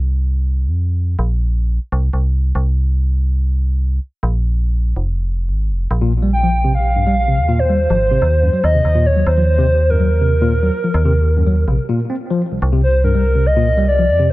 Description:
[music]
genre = IDM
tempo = 143 BPM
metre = 4/4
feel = straight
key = C minor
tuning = A4 = 440 Hz
[part]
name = metallic FM bass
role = bass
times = 0.0-14.3 s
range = F1 to F2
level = -15 LUFS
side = equal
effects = none
[part]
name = tine electric piano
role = arpeggios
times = 6.0-14.3 s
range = C2 to C4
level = -19 LUFS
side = left 1 dB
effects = slow stereo tremolo, tape echo
[part]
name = warbly nostalgic lead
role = melody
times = 6.3-14.3 s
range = Bb4 to G5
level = -17 LUFS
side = equal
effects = chorus, dub echo
[sound]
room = light reverb, digital ambience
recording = echo-heavy mix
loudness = -14 LUFS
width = side -18 dB against mid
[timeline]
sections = 0.0-12.6 A section; 12.6-14.3 B section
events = break 11.8-12.6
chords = 0.0 C7sus4; 4.0 Bb7sus2; 8.2 Ebm; 12.6 Cm11

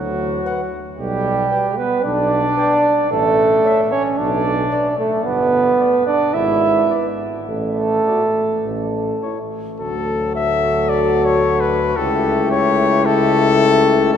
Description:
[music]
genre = classical, brass quintet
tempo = 101-116 BPM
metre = 4/4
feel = rubato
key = D major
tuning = A4 = 440 Hz
[part]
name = warm flugelhorn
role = second line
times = 0.0-14.2 s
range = F#4 to E5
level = -20 LUFS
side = right 3 dB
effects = none
[part]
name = clear trombone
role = accompaniment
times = 0.0-14.2 s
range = F#3 to E4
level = -20 LUFS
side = right 1 dB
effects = none
[part]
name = warm tuba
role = bass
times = 0.0-14.2 s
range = G1 to D2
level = -23 LUFS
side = right 1 dB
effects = none
[part]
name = warm cornet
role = melody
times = 0.5-14.2 s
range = A4 to G5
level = -19 LUFS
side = left 6 dB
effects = none
[part]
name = mellow French horn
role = accompaniment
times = 0.5-14.2 s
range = D4 to C#5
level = -25 LUFS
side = left 4 dB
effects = none
[sound]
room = wet cathedral reverb, RT60 5.8 s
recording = recorded in a church or concert hall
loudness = -15 LUFS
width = side -8 dB against mid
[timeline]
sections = 0.0-9.8 A section; 9.8-14.2 B section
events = none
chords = 0.0 Bm/D; 1.0 G/B; 3.1 A; 4.2 Bm; 5.3 G; 6.3 E/G#; 7.5 D/A (rootless); 8.7 A5; 9.8 D; 12.0 A7/C#

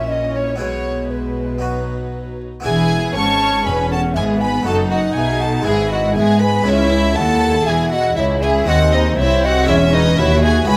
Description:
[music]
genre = classical, baroque-style concerto movement with solo episodes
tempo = 120 BPM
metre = 4/4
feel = straight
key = E major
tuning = A4 = 441 Hz
[part]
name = mellow hollow concert flute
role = melody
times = 0.0-10.8 s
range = B4 to A5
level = -23 LUFS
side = equal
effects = none
[part]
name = warm chamber violin section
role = melody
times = 0.0-10.8 s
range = D#4 to C#6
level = -26 LUFS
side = equal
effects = none
[part]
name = warm chamber violin section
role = second line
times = 0.0-10.8 s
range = D#4 to D#5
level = -25 LUFS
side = equal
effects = none
[part]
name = harpsichord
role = accompaniment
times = 0.0-10.8 s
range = B#1 to G#4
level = -30 LUFS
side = equal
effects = none
[part]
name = warm symphonic viola section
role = accompaniment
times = 0.0-10.8 s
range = F#3 to F#4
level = -28 LUFS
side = equal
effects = none
[part]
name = rich chamber double bass section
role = bass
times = 0.0-10.8 s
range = E1 to G#2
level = -24 LUFS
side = equal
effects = none
[part]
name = warm chamber cello section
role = bass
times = 0.0-10.8 s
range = B#1 to G#3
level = -23 LUFS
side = equal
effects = none
[sound]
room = moderate recital hall reverb, RT60 1.6 s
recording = none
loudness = -16 LUFS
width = mono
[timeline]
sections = 0.0-2.7 A section; 2.7-10.8 B section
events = none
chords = 0.0 F#7/A#; 0.6 E/B; 1.6 B; 2.7 E; 4.7 B/F#; 5.7 E/G#; 6.7 C#m; 8.7 G#/D#; 9.7 C#m/E

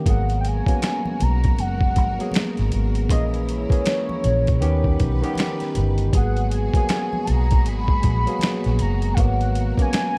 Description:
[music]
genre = R&B, neo-soul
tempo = 79 BPM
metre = 4/4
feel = swing 61% on 16ths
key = G# minor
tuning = A4 = 440 Hz
[part]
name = barky tine electric piano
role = accompaniment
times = 0.0-10.2 s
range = D#3 to G#4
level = -29 LUFS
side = equal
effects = overdrive, lush chorus
[part]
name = warm studio string section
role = sustained chords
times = 0.0-10.2 s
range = B2 to B4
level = -37 LUFS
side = equal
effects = none
[part]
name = vintage muted fingered electric bass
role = bass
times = 0.0-9.8 s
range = F#1 to D#2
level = -24 LUFS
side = equal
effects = none
[part]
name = warm velvety synth lead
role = melody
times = 0.1-10.2 s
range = C#5 to B5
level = -29 LUFS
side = equal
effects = chorus, slapback echo, plate reverb
[part]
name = boom bap sampler-style drum kit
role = drums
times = 0.1-10.2 s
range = finger snaps, hi-hat, kick drum, snare drum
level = -24 LUFS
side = equal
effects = none
[part]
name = congas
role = percussion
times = 0.3-10.1 s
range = none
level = -38 LUFS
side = equal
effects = none
[sound]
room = light reverb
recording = dark, warm production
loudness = -21 LUFS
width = mono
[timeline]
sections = 0.1-10.2 A section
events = none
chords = 0.1 G#m9; 3.1 A#m7b5; 4.6 D#7b13; 6.1 G#m9

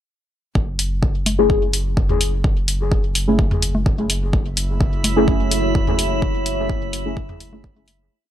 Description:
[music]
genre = dub techno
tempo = 127 BPM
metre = 4/4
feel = straight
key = F# minor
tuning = A4 = 440 Hz
[part]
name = soft dub sub bass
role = bass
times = 0.6-8.1 s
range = F#1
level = -23 LUFS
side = equal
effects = sidechain pumping
[part]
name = electronic kick drum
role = drums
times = 0.6-7.7 s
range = none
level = -19 LUFS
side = equal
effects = none
[part]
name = electronic hi-hat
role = drums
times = 0.8-8.0 s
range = none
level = -22 LUFS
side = left 1 dB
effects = none
[part]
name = electronic congas and toms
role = percussion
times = 1.3-7.9 s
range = none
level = -26 LUFS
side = equal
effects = sidechain pumping on perc, sidechain pumping on toms, dub echo
[part]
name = deep mellow chord stab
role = stabs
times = 1.4-7.7 s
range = A3 to G#4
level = -21 LUFS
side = left 2 dB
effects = chorus, phaser, sidechain pumping, dub echo
[part]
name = deep dark ambient pad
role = sustained chords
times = 5.1-8.1 s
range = A3 to C#5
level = -26 LUFS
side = equal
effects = chorus, built-in reverb, sidechain pumping
[part]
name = drifting glass-harmonics texture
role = texture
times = 4.7-8.1 s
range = E4 to E5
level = -27 LUFS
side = right 3 dB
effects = chorus, built-in reverb, sidechain pumping
[sound]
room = little or no reverb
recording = dry, gritty hardware recording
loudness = -17 LUFS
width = side -11 dB against mid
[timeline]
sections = 0.6-8.1 groove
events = filter sweep on synth stab 0.6-8.1; fade-out 5.6-8.1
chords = 0.6 F#m7

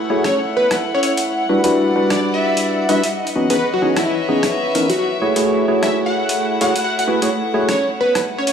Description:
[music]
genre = UK garage, two-step garage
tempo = 129 BPM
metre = 4/4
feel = swing 63% on 16ths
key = unclear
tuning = A4 = 440 Hz
[part]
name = airy breathy pad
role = sustained chords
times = 0.0-8.5 s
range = F#5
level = -30 LUFS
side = equal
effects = chorus
[part]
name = warm studio string section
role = texture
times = 0.0-8.5 s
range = G3 to F#5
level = -23 LUFS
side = left 1 dB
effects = none
[part]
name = percussive organ stab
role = stabs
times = 0.1-7.7 s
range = E3 to C#5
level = -18 LUFS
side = equal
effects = chorus, digital delay
[part]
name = plucky unison lead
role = melody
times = 0.2-8.5 s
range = E4 to F#5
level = -20 LUFS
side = equal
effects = digital delay
[part]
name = boom bap sampler-style drum kit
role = drums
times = 0.2-8.5 s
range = hi-hat, rim click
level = -24 LUFS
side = equal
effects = small room ambience
[sound]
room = wet lush hall reverb, RT60 1.9 s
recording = small room ambience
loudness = -15 LUFS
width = side -7 dB against mid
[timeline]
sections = 0.0-8.5 A section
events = filter sweep on synth stab 0.0-8.5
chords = 0.0 F#m9; 1.3 Em9; 3.1 C#m9; 5.0 F#m9

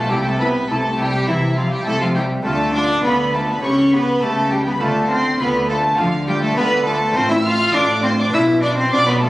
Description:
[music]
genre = classical, baroque-style concerto movement with solo episodes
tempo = 102 BPM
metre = 4/4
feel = straight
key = unclear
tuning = A4 = 438 Hz
[part]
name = dark studio violin section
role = melody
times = 0.0-9.3 s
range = E5 to F6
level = -22 LUFS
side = equal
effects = none
[part]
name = rich cello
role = melody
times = 0.0-9.3 s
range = E3 to F4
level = -19 LUFS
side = equal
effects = none
[part]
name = rich chamber violin section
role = second line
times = 0.0-9.3 s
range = E4 to F5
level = -23 LUFS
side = equal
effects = none
[part]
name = lute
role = accompaniment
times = 0.0-9.3 s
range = A2 to G4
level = -29 LUFS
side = equal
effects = none
[part]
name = dark chamber cello section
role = bass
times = 0.0-9.3 s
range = A2 to D3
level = -23 LUFS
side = right 1 dB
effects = none
[part]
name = warm studio double bass section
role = bass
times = 0.0-9.3 s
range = A1 to D2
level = -28 LUFS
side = right 1 dB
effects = none
[part]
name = warm studio viola section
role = accompaniment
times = 0.1-9.3 s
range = E4 to G4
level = -30 LUFS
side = right 1 dB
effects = none
[sound]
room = wet recital hall reverb, RT60 1.4 s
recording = recorded on a phone in the room, club reverb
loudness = -15 LUFS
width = side -17 dB against mid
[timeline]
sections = 0.0-9.3 A section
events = none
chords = 0.1 C; 2.5 Dm; 3.6 A7/C#; 4.8 Dm; 7.2 F/A; 8.3 Bdim

